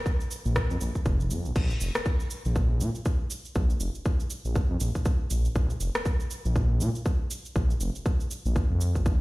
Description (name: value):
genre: afro house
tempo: 120 BPM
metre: 4/4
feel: swing 58% on 16ths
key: unclear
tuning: A4 = 440 Hz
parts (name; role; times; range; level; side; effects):
- afro-pop drum kit; drums; 0.1-9.2 s; crash cymbal, rim click, shaker, toms; -35 LUFS; equal; studio reverb
- electronic kick drum; drums; 0.1-9.2 s; none; -26 LUFS; equal; studio reverb
- dark detuned saw bass; bass; 0.5-9.2 s; F1 to Bb2; -26 LUFS; equal; sidechain pumping
room: little or no reverb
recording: played on a big sound system in a bare room, stone room reverb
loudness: -25 LUFS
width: side -20 dB against mid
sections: 0.0-9.2 A section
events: none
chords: none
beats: 0.06 0.56 1.06 | 1.56 2.06 2.56 3.06 | 3.56 4.06 4.56 5.06 | 5.56 6.06 6.56 7.06 | 7.56 8.06 8.56 9.06